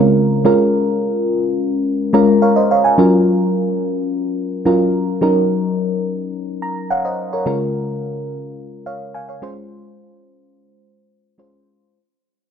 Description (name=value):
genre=pop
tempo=107 BPM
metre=4/4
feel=straight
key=Bb minor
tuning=A4 = 440 Hz
part: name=mellow FM electric piano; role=solo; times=0.0-12.0 s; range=Db3 to Bb5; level=-15 LUFS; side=equal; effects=chorus, phaser
room=light reverb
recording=none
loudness=-14 LUFS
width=side -7 dB against mid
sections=0.0-3.0 A section; 3.0-11.9 B section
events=FM electric piano fill 1.9-3.0, 6.3-7.5; fade-out 3.0-11.9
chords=0.5 Bbm7; 3.0 Gbmaj7; 5.2 Ebm7; 7.5 Bbm7/Db; 9.4 Dbmaj7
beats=0.17 | 0.73 1.29 1.85 2.41 | 2.98 3.54 4.10 4.66 | 5.22 5.78 6.34 6.90 | 7.46 8.02 8.58 9.14 | 9.70 10.27 10.82 11.39